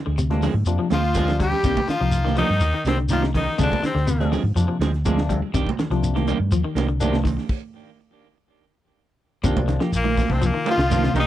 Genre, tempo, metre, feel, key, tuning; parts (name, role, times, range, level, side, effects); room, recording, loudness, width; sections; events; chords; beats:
afrobeat; 123 BPM; 4/4; straight; C minor; A4 = 440 Hz
electric guitar at the edge of break-up; arpeggios; 0.0-11.3 s; C3 to G3; -28 LUFS; left 5 dB; wide subtle chorus
clean electric guitar; stabs; 0.1-11.3 s; Eb3 to Ab4; -29 LUFS; right 6 dB; tape echo
hollow-body short-scale fingered electric bass; bass; 0.1-11.2 s; Bb1 to Ab2; -23 LUFS; equal
tight funk drum kit; drums; 0.2-11.3 s; crash cymbal, hi-hat, kick drum, snare drum; -27 LUFS; equal
congas; percussion; 0.2-11.3 s; -28 LUFS; right 8 dB
shekere; percussion; 0.2-11.3 s; -28 LUFS; left 1 dB
barky tine electric piano; accompaniment; 0.3-11.1 s; C3 to Eb4; -30 LUFS; left 7 dB; phaser
raspy tenor saxophone; melody; 0.9-4.3, 10.0-11.3 s; Bb3 to G4; -24 LUFS; left 3 dB
rich viola; second line; 0.9-4.3, 9.9-11.3 s; Bb3 to G4; -31 LUFS; right 3 dB
warm baritone saxophone; second line; 0.9-4.3, 9.9-11.3 s; Bb2 to G3; -32 LUFS; left 5 dB
little or no reverb; dry, close 1970s-style studio recording; -19 LUFS; side -13 dB against mid
0.0-9.4 A section; 9.4-11.3 B section
drum fill 0.9-1.6; stop 7.5-9.4
0.0 Dm7b5; 1.6 Cm9; 3.6 Dm7b5; 5.5 Cm9; 7.5 N.C.; 9.4 Cm9
0.18 0.67 1.15 | 1.64 2.13 2.62 3.10 | 3.59 4.08 4.57 5.05 | 5.54 6.03 6.52 7.00 | 7.49 7.98 8.47 8.96 | 9.44 9.93 10.42 10.91